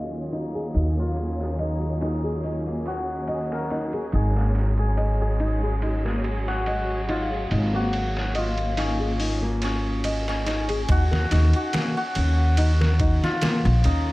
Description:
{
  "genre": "trip hop",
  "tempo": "71 BPM",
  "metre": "4/4",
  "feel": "swing 53% on 16ths",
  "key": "Eb minor",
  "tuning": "A4 = 440 Hz",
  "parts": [
    { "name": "santur", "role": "melody", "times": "0.0-14.1 s", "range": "Db4 to Bb4", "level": "-30 LUFS", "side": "left 1 dB", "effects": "tape echo" },
    { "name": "warm studio string section", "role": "sustained chords", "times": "0.0-10.9 s", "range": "Eb3 to Db4", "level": "-32 LUFS", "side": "right 1 dB", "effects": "vintage 12-bit sampler grit" },
    { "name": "nylon-string guitar", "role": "arpeggios", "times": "0.0-14.1 s", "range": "Bb3 to Eb5", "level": "-30 LUFS", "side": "left 1 dB", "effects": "low-pass filter, ping-pong delay" },
    { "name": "upright bass", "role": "bass", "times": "0.0-14.1 s", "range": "Ab1 to Eb2", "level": "-23 LUFS", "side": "equal", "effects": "none" },
    { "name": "bowed-like drone", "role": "texture", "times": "0.0-10.9 s", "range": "Ab4", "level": "-44 LUFS", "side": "right 1 dB", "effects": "none" },
    { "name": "trip hop sampler-style drum kit", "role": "drums", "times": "0.3-14.1 s", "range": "hi-hat, kick drum, ride cymbal, snare drum", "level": "-30 LUFS", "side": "equal", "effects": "high-pass filter on cymbals, studio ambience, high-pass filter on snare, high-pass filter on kick, high-pass filter on hats" }
  ],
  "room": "light reverb",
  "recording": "vinyl crackle, low-pass filter",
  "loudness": "-21 LUFS",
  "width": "side -19 dB against mid",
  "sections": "0.0-10.9 A section; 10.9-14.1 B section",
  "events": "filter sweep on nylon-string guitar 0.0-10.9; filter sweep 0.0-10.9",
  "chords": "0.0 Ebm7; 4.1 Ab7sus4; 10.9 Eb5"
}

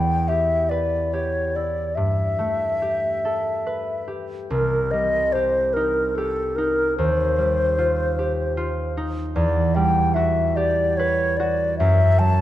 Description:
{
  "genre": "classical, impressionist duo for flute and harp",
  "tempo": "70-77 BPM",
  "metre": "3/4",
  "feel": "rubato",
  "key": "unclear",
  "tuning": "A4 = 440 Hz",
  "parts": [
    { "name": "baroque flute", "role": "melody", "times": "0.0-12.4 s", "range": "A4 to A5", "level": "-21 LUFS", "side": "left 1 dB", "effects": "none" },
    { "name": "concert harp", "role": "accompaniment", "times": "0.0-12.4 s", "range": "C2 to B4", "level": "-23 LUFS", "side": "right 1 dB", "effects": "none" }
  ],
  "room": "moderate scoring stage reverb, RT60 1.9 s",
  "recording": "dark, warm production",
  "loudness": "-19 LUFS",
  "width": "side -13 dB against mid",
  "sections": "0.0-12.4 A section",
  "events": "none",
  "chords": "0.0 Em; 2.0 G69; 4.5 Cm; 7.0 D#69; 9.4 Emadd9; 11.8 F#m"
}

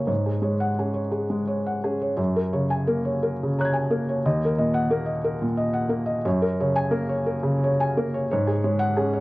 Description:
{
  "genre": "neoclassical minimalist piano",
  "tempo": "59 BPM (dotted quarters)",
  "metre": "6/8",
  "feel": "rubato",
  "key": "F# major",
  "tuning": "A4 = 439 Hz",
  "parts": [
    { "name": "felt-muted upright piano", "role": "solo", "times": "0.0-9.2 s", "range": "D#2 to G#6", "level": "-21 LUFS", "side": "equal", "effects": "cassette tape" }
  ],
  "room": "wet booth ambience, RT60 0.3 s",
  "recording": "home recording on cassette",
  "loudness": "-22 LUFS",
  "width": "side -20 dB against mid",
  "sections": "0.0-9.2 A section",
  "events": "none",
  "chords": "0.1 C#sus4/G#; 2.2 F#add9; 4.2 D#m; 6.2 F#add9; 8.3 C#sus4/G#"
}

